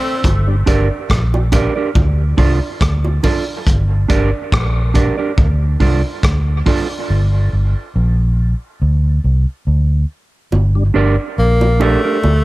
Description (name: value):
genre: dub reggae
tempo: 70 BPM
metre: 4/4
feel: swing 55% on 16ths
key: G minor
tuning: A4 = 439 Hz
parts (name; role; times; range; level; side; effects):
- bright tenor saxophone; melody; 0.0-0.2, 11.4-12.4 s; A3 to C4; -19 LUFS; left 1 dB; dub echo
- mellow electric guitar; accompaniment; 0.0-12.2 s; D4 to D5; -20 LUFS; right 5 dB; high-pass filter, dub echo
- tonewheel organ; accompaniment; 0.0-0.6, 10.8 s; G2 to D3; -27 LUFS; left 3 dB; chorus vibrato, slow rotary speaker, high-pass filter
- vintage muted fingered electric bass; bass; 0.2-12.4 s; G1 to D2; -14 LUFS; equal; none
- crunchy breakbeat drum kit; drums; 0.2-6.9 s; hi-hat, kick drum, rim click; -17 LUFS; equal; none
- bongos; percussion; 0.2-3.5, 10.5-12.4 s; none; -26 LUFS; right 3 dB; high-pass filter on perc, dub echo
room: small room ambience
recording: none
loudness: -13 LUFS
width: side -18 dB against mid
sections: 0.0-12.4 A section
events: part muted 3.7-10.5, 10.5-12.4; drums muted 7.1-10.5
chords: 0.2 Gm; 2.0 Dm; 3.7 Gm; 5.4 Dm; 7.1 Gm; 8.8 N.C.; 10.5 Gm